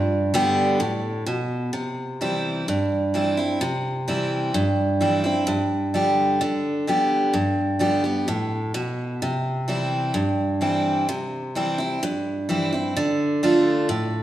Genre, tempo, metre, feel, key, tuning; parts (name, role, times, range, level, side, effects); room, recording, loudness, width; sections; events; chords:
country; 128 BPM; 4/4; straight; C major; A4 = 440 Hz
picked steel-string acoustic guitar; solo; 0.0-14.2 s; G2 to G4; -20 LUFS; right 1 dB
wet recital hall reverb, RT60 1.6 s; -20 LUFS; side -13 dB against mid
0.0-1.7 A section; 1.7-14.2 B section
0.0 Gadd9; 1.7 C; 5.5 G; 9.2 C; 13.0 Dm